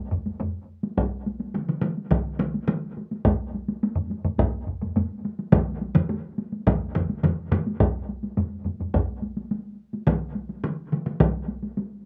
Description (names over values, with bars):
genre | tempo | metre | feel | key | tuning
japanese traditional, taiko drum ensemble | 106 BPM | 4/4 | straight | none | none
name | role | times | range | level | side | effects
taiko ensemble | percussion | 0.1-11.9 s | none | -32 LUFS | equal | slapback echo
taiko ensemble | percussion | 0.1-9.1 s | none | -30 LUFS | equal | none
solo taiko drums | percussion | 1.0-11.3 s | none | -29 LUFS | equal | none
taiko ensemble | percussion | 1.5-11.3 s | none | -27 LUFS | equal | slapback echo
room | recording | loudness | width
light reverb | recorded outdoors, with no room sound | -26 LUFS | mono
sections
0.0-7.8 A section; 7.8-12.1 B section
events
none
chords
none